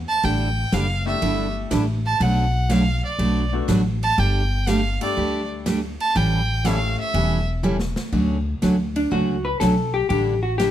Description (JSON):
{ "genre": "country, western swing", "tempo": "122 BPM", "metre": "4/4", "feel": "swing 68% on 8ths", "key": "D major", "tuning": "A4 = 439 Hz", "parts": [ { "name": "upright bass", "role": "bass", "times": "0.0-10.7 s", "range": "E1 to D2", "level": "-23 LUFS", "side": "left 1 dB", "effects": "none" }, { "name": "bright fiddle", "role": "second line", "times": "0.1-7.5 s", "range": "D5 to A5", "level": "-24 LUFS", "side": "right 2 dB", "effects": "none" }, { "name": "picked steel-string acoustic guitar", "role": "accompaniment", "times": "0.2-10.7 s", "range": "B2 to A4", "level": "-23 LUFS", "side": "right 2 dB", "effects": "none" }, { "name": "swinging big-band drum kit", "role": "drums", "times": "0.2-10.7 s", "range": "crash cymbal, hi-hat, kick drum, ride cymbal, snare drum, toms", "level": "-34 LUFS", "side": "left 1 dB", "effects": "none" }, { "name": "bright upright piano", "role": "accompaniment", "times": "1.1-7.4 s", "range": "G3 to A4", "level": "-29 LUFS", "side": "left 8 dB", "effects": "none" }, { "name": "vintage hollow-body jazz guitar", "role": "melody", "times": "9.0-10.7 s", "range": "D4 to B4", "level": "-22 LUFS", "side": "left 4 dB", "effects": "none" } ], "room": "light reverb", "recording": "none", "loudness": "-19 LUFS", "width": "side -11 dB against mid", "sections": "0.0-8.1 A section; 8.1-10.7 B section", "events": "fiddle solo 0.0-8.1; drum fill 7.6-8.1", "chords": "0.2 A7sus4; 2.2 Bm7; 4.2 Gsus2; 6.2 A7; 8.1 Dmaj7; 10.1 A7sus4" }